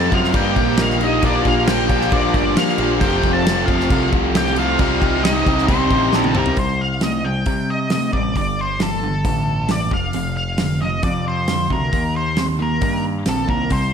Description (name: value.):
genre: classic rock.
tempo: 134 BPM.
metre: 4/4.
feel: straight.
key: C dorian.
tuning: A4 = 444 Hz.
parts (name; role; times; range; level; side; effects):
octave-fuzz lead guitar; melody; 0.0-13.9 s; A4 to A5; -23 LUFS; left 1 dB; distortion.
fuzz lead guitar; second line; 0.0-6.3 s; C4 to A4; -25 LUFS; right 3 dB; distortion, slapback echo.
picked steel-string acoustic guitar; accompaniment; 0.0-6.6 s; G2 to A4; -27 LUFS; left 7 dB; none.
string machine, cellos; sustained chords; 0.0-6.6 s; A3 to C5; -30 LUFS; right 1 dB; none.
distorted electric guitar; riff; 0.0-13.9 s; F2 to Eb4; -26 LUFS; left 10 dB; distortion.
distorted electric guitar; riff; 0.0-6.6 s; F2 to Eb4; -24 LUFS; left 1 dB; overdrive.
overdriven electric guitar; riff; 0.0-13.9 s; F2 to F4; -24 LUFS; right 9 dB; slapback echo.
growling picked electric bass; bass; 0.0-13.9 s; F1 to C3; -24 LUFS; equal; overdrive.
damped 70s drum kit; drums; 0.1-13.8 s; crash cymbal, hi-hat, kick drum, snare drum, toms; -21 LUFS; equal; none.
room: moderate recital hall reverb, RT60 1.4 s, studio reverb.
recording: big arena sound.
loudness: -16 LUFS.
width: side -7 dB against mid.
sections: 0.0-6.6 A section; 6.6-13.9 B section.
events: drum fill 6.1-6.6.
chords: 0.3 Eb; 1.2 Bb6; 3.0 F; 4.8 Cm; 6.6 C5; 8.4 Gsus2; 9.9 F5; 11.9 Eb.